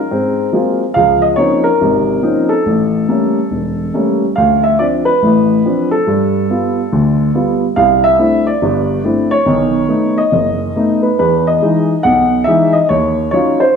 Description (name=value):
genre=solo jazz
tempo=141 BPM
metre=4/4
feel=swing 65% on 8ths, rubato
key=unclear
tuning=A4 = 440 Hz
part: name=dark upright piano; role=solo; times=0.0-13.8 s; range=E1 to F#5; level=-11 LUFS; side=equal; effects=none
room=wet large studio reverb, RT60 1.3 s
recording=band playing live in one room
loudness=-11 LUFS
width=side -6 dB against mid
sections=0.0-11.2 A section; 11.2-13.8 B section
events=none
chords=0.1 Ab13; 1.0 Dbmaj13; 2.7 A7b9; 4.4 Dm7; 6.1 G7; 7.8 C69; 9.5 B7; 11.2 Emaj7; 12.9 D#m9